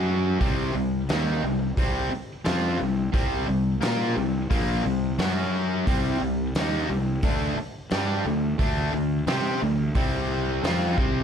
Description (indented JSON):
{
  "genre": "classic rock",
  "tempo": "88 BPM",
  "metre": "4/4",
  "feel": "straight",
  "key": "unclear",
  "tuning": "A4 = 440 Hz",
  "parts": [
    { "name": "distorted electric guitar", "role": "riff", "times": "0.0-11.2 s", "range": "Bb2 to C5", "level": "-25 LUFS", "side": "left 1 dB", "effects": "distortion" },
    { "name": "fuzz fingered electric bass", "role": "bass", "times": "0.0-11.2 s", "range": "Bb1 to C3", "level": "-28 LUFS", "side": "equal", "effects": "overdrive" },
    { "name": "raw garage drum kit", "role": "drums", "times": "0.4-11.1 s", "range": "hi-hat, kick drum, snare drum", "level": "-28 LUFS", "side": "equal", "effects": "none" }
  ],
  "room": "light reverb, small room reverb",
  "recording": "none",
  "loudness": "-22 LUFS",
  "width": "side -8 dB against mid",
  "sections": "0.0-11.2 A section",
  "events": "none",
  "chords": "0.4 C5; 5.2 F#5; 5.9 C5; 7.2 D5; 10.0 C5; 10.6 N.C."
}